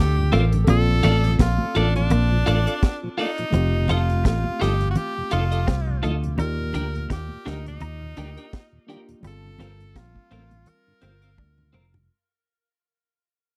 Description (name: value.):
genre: lovers rock reggae.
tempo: 84 BPM.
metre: 4/4.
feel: swing 56% on 16ths.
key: unclear.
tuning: A4 = 440 Hz.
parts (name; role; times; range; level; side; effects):
edgy tenor saxophone; melody; 0.0-11.7 s; D4 to Bb4; -31 LUFS; equal; tape echo.
barky tine electric piano; accompaniment; 0.0-12.1 s; G3 to A5; -34 LUFS; equal; overdrive.
clean electric guitar; riff; 0.0-12.0 s; F3 to Eb4; -33 LUFS; equal; subtle chorus.
fingered electric bass; bass; 0.0-12.1 s; F1 to Eb2; -24 LUFS; equal; none.
mellow tonewheel organ; accompaniment; 0.2-12.0 s; Eb2 to Eb4; -33 LUFS; equal; none.
twelve-string electric guitar; stabs; 0.3-11.9 s; C4 to Eb5; -30 LUFS; equal; slapback echo.
deep reggae drum kit; drums; 0.3-12.1 s; hi-hat, kick drum, snare drum, toms; -24 LUFS; equal; none.
congas; percussion; 0.3-11.6 s; none; -27 LUFS; equal; none.
room: little or no reverb.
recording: dry, close 1970s-style studio recording.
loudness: -21 LUFS.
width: mono.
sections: 0.0-12.1 A section.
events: fade-out 0.0-12.1; drum fill 11.4-12.1.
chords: 0.0 Gm11; 0.7 Bbmaj7; 3.5 F7; 6.4 Ebmaj7; 9.2 Gm11.